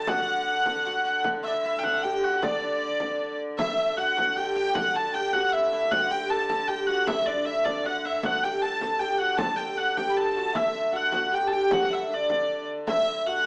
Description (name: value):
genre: medieval dance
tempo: 155 BPM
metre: 3/4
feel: straight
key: D major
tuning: A4 = 441 Hz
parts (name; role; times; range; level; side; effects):
- warm hurdy-gurdy; melody; 0.0-13.5 s; D5 to A5; -25 LUFS; equal; none
- oud; second line; 0.0-13.5 s; D4 to A4; -30 LUFS; equal; none
- rich hurdy-gurdy; drone; 0.0-13.5 s; D3; -35 LUFS; equal; none
- breathy soprano recorder; second line; 0.1-12.6 s; D5 to B5; -32 LUFS; left 1 dB; none
- frame drum; percussion; 0.1-13.2 s; none; -34 LUFS; equal; none
room: wet stone room reverb, RT60 1.2 s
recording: band playing live in one room, small speaker sound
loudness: -23 LUFS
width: side -30 dB against mid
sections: 0.0-3.6 A section; 3.6-12.9 B section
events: none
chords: none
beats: | 0.08 0.47 0.86 | 1.25 1.64 2.03 | 2.42 2.81 3.20 | 3.59 3.97 4.36 | 4.75 5.14 5.53 | 5.92 6.30 6.69 | 7.08 7.47 7.86 | 8.24 8.63 9.02 | 9.40 9.79 10.18 | 10.56 10.95 11.33 | 11.72 12.10 12.49 | 12.87 13.26